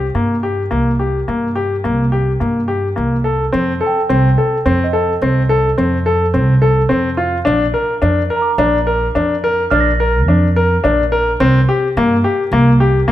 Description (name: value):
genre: contemporary instrumental, chamber music in an uneven meter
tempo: 107 BPM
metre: 7/4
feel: straight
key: unclear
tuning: A4 = 442 Hz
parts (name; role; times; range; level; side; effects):
- clear baby grand piano; arpeggios; 0.0-13.1 s; Bb3 to Bb4; -15 LUFS; left 2 dB; none
- upright bass; bass; 0.0-13.1 s; Bb1 to G2; -16 LUFS; right 1 dB; none
- celesta; texture; 3.9-11.4 s; Eb5 to Bb6; -22 LUFS; right 5 dB; none
room: moderate recital hall reverb, RT60 1.6 s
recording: none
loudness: -12 LUFS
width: side -13 dB against mid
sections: 0.0-3.5 A section; 3.5-13.1 B section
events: none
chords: 0.0 C5; 3.5 F7; 7.5 Bbmaj7; 11.4 C7(no3)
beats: 0.15 0.72 1.28 1.85 2.41 2.97 | 3.54 4.10 4.66 5.22 5.78 6.35 6.91 | 7.47 8.03 8.59 9.15 9.71 10.28 10.84 | 11.40 11.96 12.52 13.08